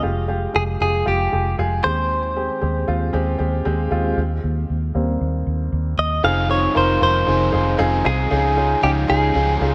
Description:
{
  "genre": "pop",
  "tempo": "116 BPM",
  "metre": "4/4",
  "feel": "straight",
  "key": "F minor",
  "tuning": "A4 = 440 Hz",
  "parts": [
    { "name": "warm baby grand piano", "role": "accompaniment", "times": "0.0-9.7 s", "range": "Db3 to Bb4", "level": "-25 LUFS", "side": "equal", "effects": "none" },
    { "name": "vintage muted fingered electric bass", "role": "bass", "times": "0.0-9.7 s", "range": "F1 to Eb2", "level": "-24 LUFS", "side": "equal", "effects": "none" },
    { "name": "direct-recorded clean electric guitar", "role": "melody", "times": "0.6-9.7 s", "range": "G4 to F5", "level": "-23 LUFS", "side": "equal", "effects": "none" },
    { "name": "crunchy overdriven guitar", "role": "riff", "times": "6.2-9.7 s", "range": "F2 to F4", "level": "-29 LUFS", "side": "equal", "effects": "none" }
  ],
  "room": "light reverb, digital ambience",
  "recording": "none",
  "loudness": "-20 LUFS",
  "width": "mono",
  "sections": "0.0-4.2 A section; 4.2-6.2 B section; 6.2-9.7 C section",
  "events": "grand piano solo 4.2-6.2",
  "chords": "0.0 Fmadd9; 1.8 Abmaj7/Eb; 4.2 Eb6; 6.2 Fm7; 8.3 Dbadd9",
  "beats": "| 0.03 0.54 1.06 1.58 | 2.10 2.61 3.13 3.65 | 4.17 4.68 5.20 5.72 | 6.24 6.75 7.27 7.79 | 8.31 8.83 9.34"
}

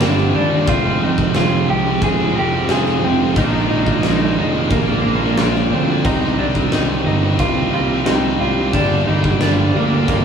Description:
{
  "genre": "post-rock",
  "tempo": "89 BPM",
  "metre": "4/4",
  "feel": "straight",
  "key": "C minor",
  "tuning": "A4 = 437 Hz",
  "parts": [
    { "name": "clean electric guitar", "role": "melody", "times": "0.0-10.2 s", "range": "Bb3 to Ab4", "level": "-21 LUFS", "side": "right 1 dB", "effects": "none" },
    { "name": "pedal steel guitar", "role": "sustained chords", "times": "0.0-10.2 s", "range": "Ab3 to Bb5", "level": "-37 LUFS", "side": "left 1 dB", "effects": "none" },
    { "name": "electric guitar through a small old amp", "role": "arpeggios", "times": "0.0-10.2 s", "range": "F2 to G4", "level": "-27 LUFS", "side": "left 1 dB", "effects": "none" },
    { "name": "twangy electric guitar", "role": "arpeggios", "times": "0.0-9.4 s", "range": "Bb4 to C5", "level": "-34 LUFS", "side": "right 5 dB", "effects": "tremolo" },
    { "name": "overdriven semi-hollow guitar", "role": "riff", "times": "0.0-10.2 s", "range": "F2 to Eb4", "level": "-22 LUFS", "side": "right 6 dB", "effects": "none" },
    { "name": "tight distorted guitar", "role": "riff", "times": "0.0-10.2 s", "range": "F2 to Eb4", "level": "-24 LUFS", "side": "left 5 dB", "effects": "distortion" },
    { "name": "fuzz fingered electric bass", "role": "bass", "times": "0.0-10.2 s", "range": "F1 to Eb2", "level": "-20 LUFS", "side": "equal", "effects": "overdrive" },
    { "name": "huge arena drum kit", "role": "drums", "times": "0.0-10.2 s", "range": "crash cymbal, kick drum, snare drum", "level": "-20 LUFS", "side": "equal", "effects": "none" }
  ],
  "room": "moderate small room reverb, RT60 0.5 s",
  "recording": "band playing live in one room, small room ambience",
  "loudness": "-14 LUFS",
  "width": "side -7 dB against mid",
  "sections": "0.0-10.2 A section",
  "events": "none",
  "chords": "0.0 Gm7; 0.7 Fm; 3.4 Bb7sus4; 6.0 Cm7; 8.7 Gm7",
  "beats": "0.01 | 0.68 1.35 2.02 2.69 | 3.36 4.03 4.71 5.38 | 6.05 6.72 7.39 8.06 | 8.74 9.41 10.08"
}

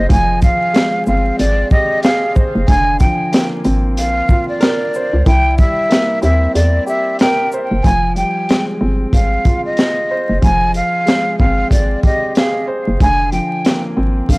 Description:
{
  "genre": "hip hop, boom-bap hip-hop",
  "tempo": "93 BPM",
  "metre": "4/4",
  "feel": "swing 60% on 16ths",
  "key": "F dorian",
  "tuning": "A4 = 440 Hz",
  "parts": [
    { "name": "breathy hollow jazz flute", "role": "melody", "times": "0.0-14.4 s", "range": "D5 to Ab5", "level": "-17 LUFS", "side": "equal", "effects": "high-pass filter, low-pass filter, tape echo" },
    { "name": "dark grand piano", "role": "accompaniment", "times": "0.0-14.4 s", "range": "D3 to C5", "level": "-21 LUFS", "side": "equal", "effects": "cassette tape, high-pass filter, low-pass filter" },
    { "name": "hollow knocking FM bass", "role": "bass", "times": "0.0-14.4 s", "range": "F1 to E2", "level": "-16 LUFS", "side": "equal", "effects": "none" },
    { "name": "crunchy breakbeat drum kit", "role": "drums", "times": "0.1-14.4 s", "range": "hi-hat, kick drum, shaker, snare drum", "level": "-14 LUFS", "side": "equal", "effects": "none" }
  ],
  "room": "small room ambience",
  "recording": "dry, gritty hardware recording, vinyl crackle",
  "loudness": "-12 LUFS",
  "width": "side -24 dB against mid",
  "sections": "0.0-7.8 A section; 7.8-14.4 B section",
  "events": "break 6.6-7.8",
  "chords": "0.0 Fmadd9; 2.7 Bbadd9/F; 5.3 C7; 7.8 Fmadd9; 13.0 Bbadd9/F",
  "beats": "| 0.10 0.75 1.39 2.04 | 2.68 3.33 3.97 4.62 | 5.26 5.91 6.55 7.20 | 7.84 8.49 9.13 9.78 | 10.43 11.07 11.71 12.36 | 13.01 13.65 14.30"
}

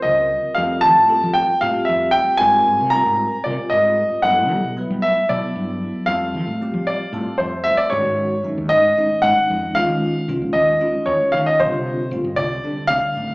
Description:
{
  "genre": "jazz",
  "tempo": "229 BPM (eighths)",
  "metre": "7/8",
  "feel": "straight",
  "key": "F major",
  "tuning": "A4 = 440 Hz",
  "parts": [
    { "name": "warm grand piano", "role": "melody", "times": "0.0-13.3 s", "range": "C5 to Bb5", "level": "-16 LUFS", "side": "equal", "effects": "slapback echo" },
    { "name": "bell-like tine electric piano", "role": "accompaniment", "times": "0.0-13.3 s", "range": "D3 to E5", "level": "-25 LUFS", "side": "equal", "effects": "medium stereo tremolo, phaser" },
    { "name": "woody fretless electric bass", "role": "bass", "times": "0.0-13.3 s", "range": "A1 to G3", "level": "-26 LUFS", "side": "equal", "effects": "none" }
  ],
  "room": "wet club reverb, RT60 0.5 s",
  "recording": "live gig heard through the venue's PA, club reverb, small speaker sound",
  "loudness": "-16 LUFS",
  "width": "side -25 dB against mid",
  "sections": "0.0-7.9 A section; 7.9-13.3 B section",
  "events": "tine electric piano fill 7.1-7.9",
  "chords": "0.0 Dbmaj9; 0.6 Fadd9; 2.4 Abmaj9; 4.2 Gmaj9; 6.1 Fadd9; 7.9 Ab7sus4; 9.8 Eb9sus4; 11.6 Csus4",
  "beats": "0.05 0.31 | 0.57 0.84 1.10 1.36 1.62 1.89 2.15 | 2.41 2.67 2.94 3.20 3.46 3.72 3.98 | 4.25 4.51 4.77 5.03 5.30 5.56 5.82 | 6.08 6.35 6.61 6.87 7.13 7.40 7.66 | 7.92 8.19 8.45 8.71 8.97 9.23 9.50 | 9.76 10.02 10.29 10.55 10.81 11.07 11.34 | 11.60 11.86 12.12 12.39 12.65 12.91 13.17"
}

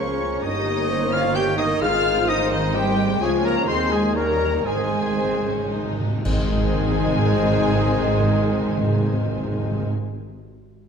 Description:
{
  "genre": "classical, dramatic, fast romantic movement for symphony orchestra",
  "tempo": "111-133 BPM",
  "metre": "3/4",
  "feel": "rubato",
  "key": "Ab major",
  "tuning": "A4 = 440 Hz",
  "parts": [
    { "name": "rich symphonic violin section", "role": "melody", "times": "0.0-9.9 s", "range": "Eb5 to G6", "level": "-30 LUFS", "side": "left 4 dB", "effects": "none" },
    { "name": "concert flute", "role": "second line", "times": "0.0-9.9 s", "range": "Eb5 to G6", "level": "-32 LUFS", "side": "left 3 dB", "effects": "none" },
    { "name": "rich symphonic violin section", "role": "second line", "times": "0.0-9.9 s", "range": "C4 to C5", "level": "-32 LUFS", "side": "left 5 dB", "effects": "none" },
    { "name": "warm clarinet", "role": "second line", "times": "0.0-9.9 s", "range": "Eb4 to G5", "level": "-32 LUFS", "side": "left 2 dB", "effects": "none" },
    { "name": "warm cor anglais", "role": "second line", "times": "0.0-9.9 s", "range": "Bb4 to Db5", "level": "-35 LUFS", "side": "right 4 dB", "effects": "none" },
    { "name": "mellow bassoon", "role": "accompaniment", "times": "0.0-9.9 s", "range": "Eb3 to Ab3", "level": "-33 LUFS", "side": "equal", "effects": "none" },
    { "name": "rich symphonic viola section", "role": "accompaniment", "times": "0.0-9.9 s", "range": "Eb3 to Bb3", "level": "-29 LUFS", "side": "right 3 dB", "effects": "none" },
    { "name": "mellow French horn section", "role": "sustained chords", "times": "0.0-9.9 s", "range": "C4 to C5", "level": "-27 LUFS", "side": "left 6 dB", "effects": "none" },
    { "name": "clear trumpet", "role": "stabs", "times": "0.0-9.9 s", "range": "Eb4 to G5", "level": "-30 LUFS", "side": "right 1 dB", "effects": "none" },
    { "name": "clear symphonic double bass section", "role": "bass", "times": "0.0-9.9 s", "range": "G1 to Eb2", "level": "-28 LUFS", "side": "right 3 dB", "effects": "none" },
    { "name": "warm symphonic cello section", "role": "bass", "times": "0.0-9.9 s", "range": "Eb3 to G4", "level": "-27 LUFS", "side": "right 3 dB", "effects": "none" },
    { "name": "timpani", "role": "percussion", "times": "1.8-2.5, 4.7-9.9 s", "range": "Ab2", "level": "-25 LUFS", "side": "right 1 dB", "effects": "none" },
    { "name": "cymbal swell, clash cymbals and concert bass drum", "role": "percussion", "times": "3.2-7.3 s", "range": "none", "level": "-30 LUFS", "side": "equal", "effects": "none" }
  ],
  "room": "moderate scoring stage reverb, RT60 1.6 s",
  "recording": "dark, warm production",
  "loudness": "-18 LUFS",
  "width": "side -6 dB against mid",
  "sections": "0.0-6.3 A section; 6.3-9.4 B section",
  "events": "slowing down 2.5-6.3; timpani fill 4.7-6.3; band accent 6.3-6.8",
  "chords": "0.4 Eb7/G; 1.8 Ab; 3.2 Db; 3.7 Ab/Eb; 4.2 Eb7; 4.7 Ab",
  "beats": "| 0.44 0.90 1.36 | 1.82 2.28 2.75 | 3.21 3.68 4.16 | 4.67 5.19 5.72 | 6.25 6.78 7.31 | 7.84 8.36 8.89"
}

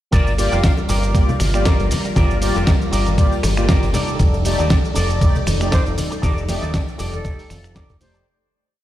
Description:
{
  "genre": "nu-disco, nu disco",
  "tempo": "118 BPM",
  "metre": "4/4",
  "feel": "swing 56% on 16ths",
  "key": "G minor",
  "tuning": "A4 = 439 Hz",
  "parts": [
    { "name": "string machine, full ensemble", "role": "sustained chords", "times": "0.1-8.2 s", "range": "G3 to D5", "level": "-27 LUFS", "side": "left 1 dB", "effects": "phaser, ensemble chorus, sidechain pumping" },
    { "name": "electric guitar with an envelope filter", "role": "riff", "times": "0.1-8.2 s", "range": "Eb4 to F5", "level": "-26 LUFS", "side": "right 1 dB", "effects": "analog chorus, dub echo" },
    { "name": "fingered electric bass with an envelope filter", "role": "bass", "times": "0.1-8.2 s", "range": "F1 to Eb2", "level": "-21 LUFS", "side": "equal", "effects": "tube saturation" },
    { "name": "dusty soul sampler-style drum kit", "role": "drums", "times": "0.1-8.2 s", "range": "finger snaps, hi-hat, shaker, snare drum", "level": "-24 LUFS", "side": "right 1 dB", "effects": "none" },
    { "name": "electronic kick drum", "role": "drums", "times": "0.1-8.0 s", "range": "none", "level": "-16 LUFS", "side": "equal", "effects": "none" },
    { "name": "tambourine, bongos and congas", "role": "percussion", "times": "0.1-8.2 s", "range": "none", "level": "-28 LUFS", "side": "left 2 dB", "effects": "none" },
    { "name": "mellow synth brass", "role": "accompaniment", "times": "0.4-8.3 s", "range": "A3 to D5", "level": "-26 LUFS", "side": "left 1 dB", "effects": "chorus, sidechain pumping, dub echo" },
    { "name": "bright reedy jazz flute", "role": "melody", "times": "5.7-8.3 s", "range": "A4 to C5", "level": "-33 LUFS", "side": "left 1 dB", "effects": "vintage 12-bit sampler grit, ping-pong delay" }
  ],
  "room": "light reverb, digital ambience",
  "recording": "played on a big sound system in a bare room, stone room reverb",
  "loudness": "-15 LUFS",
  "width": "side -13 dB against mid",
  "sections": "0.1-8.3 drop",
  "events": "drop 0.1-8.3; fade-out 5.6-8.3",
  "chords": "0.1 Gm7; 3.9 F13",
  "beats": "| 0.13 0.64 1.15 1.65 | 2.16 2.67 3.18 3.69 | 4.20 4.71 5.21 5.72 | 6.23 6.74 7.25 7.76"
}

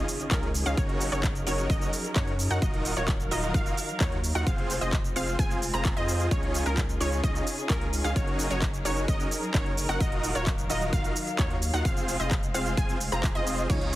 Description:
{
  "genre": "EDM, festival progressive house",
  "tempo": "130 BPM",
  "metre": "4/4",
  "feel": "straight",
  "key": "unclear",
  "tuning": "A4 = 439 Hz",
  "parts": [
    { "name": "warm studio string section", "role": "sustained chords", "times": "0.0-14.0 s", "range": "Db3 to F5", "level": "-36 LUFS", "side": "equal", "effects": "sidechain pumping" },
    { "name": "wide unison pluck", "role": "arpeggios", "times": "0.0-14.0 s", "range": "Bb4 to Bb5", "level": "-34 LUFS", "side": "equal", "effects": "sidechain pumping, dub echo" },
    { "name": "big supersaw lead", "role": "riff", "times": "0.0-14.0 s", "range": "C4 to Bb5", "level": "-32 LUFS", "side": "right 1 dB", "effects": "sidechain pumping, dub echo" },
    { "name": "saturated sub bass", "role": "bass", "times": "0.0-14.0 s", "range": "Eb1 to Gb2", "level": "-32 LUFS", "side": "equal", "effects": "sidechain pumping" },
    { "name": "impact", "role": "sound effects", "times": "0.0-0.8 s", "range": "none", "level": "-46 LUFS", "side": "right 1 dB", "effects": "none" },
    { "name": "big-room dance drum kit", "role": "drums", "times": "0.1-14.0 s", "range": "crash cymbal, handclaps, hi-hat, shaker", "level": "-34 LUFS", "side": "right 1 dB", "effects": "none" },
    { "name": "electronic kick drum", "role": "drums", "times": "0.3-13.8 s", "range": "none", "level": "-28 LUFS", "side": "equal", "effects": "none" },
    { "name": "felt-muted upright piano", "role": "accompaniment", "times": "13.7-13.8 s", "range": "Db3 to Eb4", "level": "-34 LUFS", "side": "right 2 dB", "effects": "sidechain pumping" }
  ],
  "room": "digital ambience",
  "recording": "heavily compressed radio sound, multiband compression",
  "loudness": "-25 LUFS",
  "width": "side -16 dB against mid",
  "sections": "0.0-14.0 A section",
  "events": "impact 0.0-0.8",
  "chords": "0.0 Dbadd9; 0.8 Gb6; 2.6 Ebmadd9; 4.5 Fm; 6.3 Dbadd9; 8.2 Gb6; 10.0 Ebmadd9; 11.9 Fm",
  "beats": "0.31 | 0.77 1.24 1.70 2.16 | 2.62 3.08 3.54 4.00 | 4.47 4.93 5.39 5.85 | 6.31 6.77 7.24 7.70 | 8.16 8.62 9.08 9.54 | 10.01 10.47 10.93 11.39 | 11.85 12.31 12.77 13.24 | 13.70"
}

